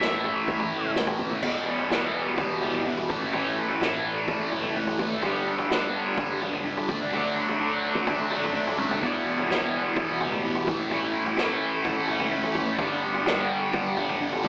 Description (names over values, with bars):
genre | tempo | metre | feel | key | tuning
psychedelic rock | 127 BPM | 4/4 | straight | E dorian | A4 = 438 Hz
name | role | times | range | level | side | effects
dark smooth lead guitar | melody | 0.0-0.9 s | E5 | -33 LUFS | equal | wah, overdrive
pipe organ, clarinet reed | sustained chords | 0.0-14.5 s | E3 to B5 | -30 LUFS | equal | none
thick fuzz guitar | riff | 0.0-14.5 s | E2 to D4 | -26 LUFS | equal | distortion, phaser
vintage muted fingered electric bass | bass | 0.0-14.5 s | E1 to A2 | -43 LUFS | equal | none
vintage drum kit | drums | 0.0-14.5 s | crash cymbal, kick drum, snare drum, toms | -31 LUFS | equal | none
room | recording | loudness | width
wet cathedral reverb, RT60 4.8 s | band playing live in one room, AM radio sound | -24 LUFS | side -29 dB against mid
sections
0.0-1.4 A section; 1.4-14.5 B section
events
pipe organ solo 1.4-14.5; drum fill 8.8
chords
0.0 A; 1.4 Em; 3.1 A; 5.2 G; 6.9 D; 9.0 Em; 10.7 A; 12.8 G